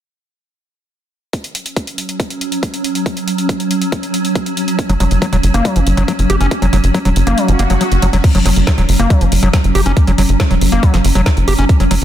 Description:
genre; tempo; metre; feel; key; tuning
psychedelic trance; 139 BPM; 4/4; straight; unclear; A4 = 440 Hz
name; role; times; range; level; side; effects
swarming drone; sustained chords; 1.9-12.0 s; F#3 to C#4; -19 LUFS; right 2 dB; built-in reverb, sidechain pumping
drum and bass drum kit; drums; 1.3-12.0 s; crash cymbal, hi-hat, snare drum; -23 LUFS; equal; overdrive, studio reverb
electronic kick drum; drums; 1.3-11.8 s; none; -13 LUFS; equal; high-pass filter on kick, studio reverb
overdriven acid bass; riff; 4.9-11.9 s; E3 to G4; -18 LUFS; left 1 dB; auto-pan, sidechain pumping, dub echo
tight sequencer bass; bass; 4.9-12.0 s; E1 to F#1; -13 LUFS; equal; none
swell; sound effects; 7.5-8.2 s; none; -22 LUFS; right 1 dB; none
room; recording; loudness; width
digital ambience; dense, heavily limited modern master; -12 LUFS; side -11 dB against mid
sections
1.3-8.2 A section; 8.2-12.0 B section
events
kick drops out 7.4-8.2; swell 7.5-8.2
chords
1.3 F#5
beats
| 1.33 1.76 2.20 2.63 | 3.06 3.49 3.92 4.36 | 4.79 5.22 5.65 6.08 | 6.51 6.95 7.38 7.81 | 8.24 8.67 9.10 9.54 | 9.97 10.40 10.83 11.26 | 11.69

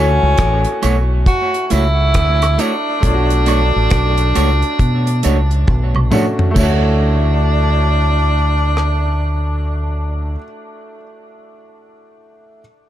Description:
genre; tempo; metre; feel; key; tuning
lovers rock reggae; 68 BPM; 4/4; swing 62% on 16ths; D major; A4 = 440 Hz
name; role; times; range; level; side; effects
warm tenor saxophone; melody; 0.0-10.4 s; C#4 to F#4; -19 LUFS; right 1 dB; tape echo
clear baby grand piano; accompaniment; 0.0-12.6 s; A3 to C#5; -25 LUFS; left 1 dB; tape echo
electric guitar through a small old amp; stabs; 0.0-10.4 s; A3 to C#5; -22 LUFS; right 2 dB; tape echo
deep dub fingered electric bass; bass; 0.0-10.4 s; A1 to B2; -15 LUFS; equal; none
deep reggae drum kit; drums; 0.4-9.0 s; crash cymbal, hi-hat, kick drum, rim click, toms; -19 LUFS; equal; gated reverb
tambourine and woodblock; percussion; 0.8-7.0 s; none; -28 LUFS; right 6 dB; none
room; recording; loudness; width
light reverb, small room ambience; none; -13 LUFS; side -12 dB against mid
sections
0.0-6.6 A section; 6.6-10.1 B section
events
drum fill 5.7-6.6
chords
0.0 Dmaj9; 3.0 Bm9; 6.6 Dmaj9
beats
0.39 1.27 2.15 | 3.03 3.92 4.80 5.68 | 6.56 7.45 8.33 9.21

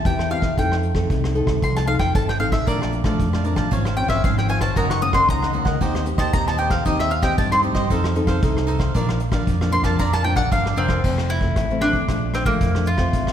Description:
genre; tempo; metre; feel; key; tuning
samba and choro; 115 BPM; 4/4; straight; Bb major; A4 = 438 Hz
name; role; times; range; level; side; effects
mandolin; melody; 0.0-13.3 s; Bb3 to Eb6; -23 LUFS; left 1 dB; none
nylon-string guitar; accompaniment; 0.0-13.3 s; F2 to A4; -26 LUFS; left 2 dB; none
fingered electric bass with an envelope filter; bass; 0.1-13.3 s; F1 to G2; -23 LUFS; equal; none
vintage brush drum kit; drums; 0.1-13.3 s; crash cymbal, hi-hat, kick drum, rim click; -24 LUFS; equal; none
cavaquinho; accompaniment; 2.7-11.0 s; D4 to A5; -28 LUFS; right 2 dB; none
room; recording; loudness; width
moderate concert hall reverb, RT60 2.0 s; recorded in a church or concert hall; -18 LUFS; side -9 dB against mid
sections
0.0-11.0 A section; 11.0-13.3 B section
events
mandolin solo 0.0-11.0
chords
0.0 C/E; 0.6 F7; 2.7 Bbmaj7; 3.7 Dbmaj7/Ab; 4.8 Gb6; 5.8 Eb6; 6.9 Cm/Eb; 7.9 F7; 9.0 Bb; 11.0 F; 12.1 Bbmaj7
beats
0.05 | 0.57 1.10 1.62 2.15 | 2.67 3.19 3.72 4.24 | 4.77 5.29 5.81 6.34 | 6.86 7.38 7.91 8.43 | 8.95 9.47 10.00 10.52 | 11.04 11.57 12.09 12.61 | 13.14

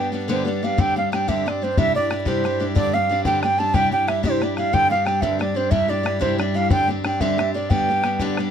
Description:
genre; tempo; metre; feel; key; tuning
celtic folk, Celtic jig; 122 BPM (dotted quarters); 6/8; straight; G mixolydian; A4 = 439 Hz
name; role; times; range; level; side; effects
wooden flute; melody; 0.0-8.2 s; C5 to A5; -21 LUFS; right 2 dB; none
picked steel-string acoustic guitar; accompaniment; 0.0-8.5 s; G2 to G4; -23 LUFS; left 2 dB; none
muted cello; drone; 0.0-8.5 s; G2; -30 LUFS; equal; none
bodhran; percussion; 0.8-8.4 s; none; -22 LUFS; left 3 dB; none
room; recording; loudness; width
light reverb; close, detailed microphones; -18 LUFS; side -8 dB against mid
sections
0.8-8.5 A section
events
none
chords
0.0 G; 0.8 Gsus4; 1.8 Cadd9; 2.8 Gsus4; 3.8 Cadd9; 4.7 Gsus4; 5.7 Cadd9; 6.7 Gsus4; 7.7 G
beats
0.29 | 0.79 1.28 | 1.77 2.27 | 2.76 3.26 | 3.75 4.24 | 4.74 5.23 | 5.72 6.22 | 6.71 7.21 | 7.70 8.19

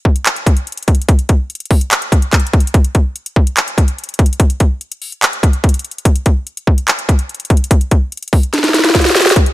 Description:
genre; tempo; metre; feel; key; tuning
hip hop; 145 BPM; 4/4; half-time; none; none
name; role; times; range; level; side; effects
trap drum kit; drums; 0.1-9.5 s; handclaps, hi-hat, kick drum, snare drum; -11 LUFS; equal; none
room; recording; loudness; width
little or no reverb; none; -11 LUFS; side -17 dB against mid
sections
0.0-9.4 A section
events
drum fill 8.5-9.4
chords
none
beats
0.26 0.67 | 1.09 1.50 1.91 2.33 | 2.74 3.15 3.57 3.98 | 4.40 4.81 5.22 5.64 | 6.05 6.47 6.88 7.29 | 7.71 8.12 8.54 8.95 | 9.36

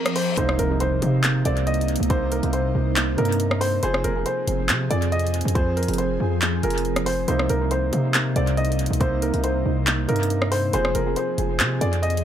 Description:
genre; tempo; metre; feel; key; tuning
hip hop, trap; 139 BPM; 4/4; half-time; C minor; A4 = 440 Hz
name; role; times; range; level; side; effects
warm grand piano; melody; 0.0-12.2 s; Bb4 to Eb5; -26 LUFS; equal; low-pass filter, dub echo
ethereal airy pad; sustained chords; 0.0-12.2 s; C3 to Ab4; -28 LUFS; equal; ensemble chorus, built-in reverb
reverse cymbal and impact; sound effects; 0.0-2.1 s; none; -34 LUFS; left 2 dB; none
trap drum kit; drums; 0.1-12.2 s; handclaps, hi-hat, kick drum, rim click; -25 LUFS; equal; overdrive, dub echo
dark baby grand piano; accompaniment; 0.4-12.2 s; C3 to Ab4; -27 LUFS; right 3 dB; low-pass filter, dub echo
hard-hitting 808-style bass; bass; 0.4-12.2 s; F1 to C3; -24 LUFS; equal; none
room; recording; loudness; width
little or no reverb; echo-heavy mix; -20 LUFS; side -10 dB against mid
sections
0.4-12.2 A section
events
break 0.0-0.4; reverse cymbal 0.0-0.4; impact 0.4-2.1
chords
0.4 Cm7; 3.8 Fm; 7.3 Cm7; 10.7 Fm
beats
| 0.37 0.81 1.24 1.67 | 2.10 2.53 2.96 3.40 | 3.83 4.26 4.69 5.12 | 5.55 5.99 6.42 6.85 | 7.28 7.71 8.14 8.58 | 9.01 9.44 9.87 10.30 | 10.73 11.17 11.60 12.03

